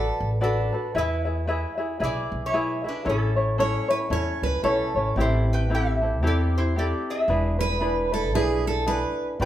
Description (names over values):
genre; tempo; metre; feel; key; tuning
Hawaiian; 114 BPM; 4/4; swing 59% on 8ths; A major, A minor from 5.2 s; A4 = 437 Hz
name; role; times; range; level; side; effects
metal-body resonator slide guitar; melody; 0.0-9.5 s; C#4 to G5; -29 LUFS; equal; none
picked steel-string acoustic guitar; second line; 0.0-0.3, 3.6-9.3 s; G#4 to C#5; -27 LUFS; right 4 dB; none
tenor ukulele; accompaniment; 0.0-9.5 s; C4 to E5; -26 LUFS; left 2 dB; none
upright bass; bass; 0.0-9.5 s; E1 to E2; -26 LUFS; equal; none
room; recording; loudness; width
moderate large studio reverb, RT60 1.2 s; band playing live in one room; -22 LUFS; side -12 dB against mid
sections
0.0-5.2 A section; 5.2-9.5 B section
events
none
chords
0.0 D6; 0.9 E; 3.1 A; 5.2 Am7; 7.3 E7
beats
0.42 | 0.95 1.48 2.01 2.54 | 3.06 3.59 4.12 4.65 | 5.18 5.71 6.24 6.76 | 7.29 7.82 8.35 8.88 | 9.40